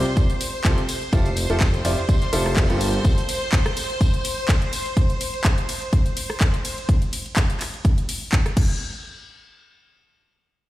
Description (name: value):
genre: piano house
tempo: 125 BPM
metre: 4/4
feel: swing 54% on 16ths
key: F major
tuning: A4 = 440 Hz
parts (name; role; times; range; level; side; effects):
- string machine, violins; sustained chords; 0.0-6.9 s; C5; -29 LUFS; equal; ensemble chorus, sidechain pumping
- clear upright piano; riff; 0.0-3.0 s; G2 to D5; -26 LUFS; right 1 dB; sidechain pumping, dub echo
- fat analog bass; bass; 0.0-3.0 s; F1 to C2; -23 LUFS; equal; sidechain pumping
- house drum kit; drums; 0.1-8.7 s; crash cymbal, handclaps, hi-hat, ride cymbal, rim click; -28 LUFS; left 1 dB; overdrive
- cloth-damped thuddy drum kit; drums; 0.2-5.0 s; hi-hat, snare drum, tambourine; -36 LUFS; equal; none
- electronic kick drum; drums; 0.2-8.7 s; none; -19 LUFS; equal; overdrive
room: small room reverb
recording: played on a big sound system in a bare room, stone room reverb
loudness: -19 LUFS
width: side -16 dB against mid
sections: 0.0-8.8 A section; 8.8-10.7 B section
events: drop 0.0-8.8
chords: 0.0 Csus4; 1.1 Fmaj9; 2.8 N.C.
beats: 0.17 0.65 | 1.13 1.61 2.09 2.57 | 3.05 3.53 4.01 4.49 | 4.97 5.45 5.93 6.41 | 6.89 7.37 7.85 8.33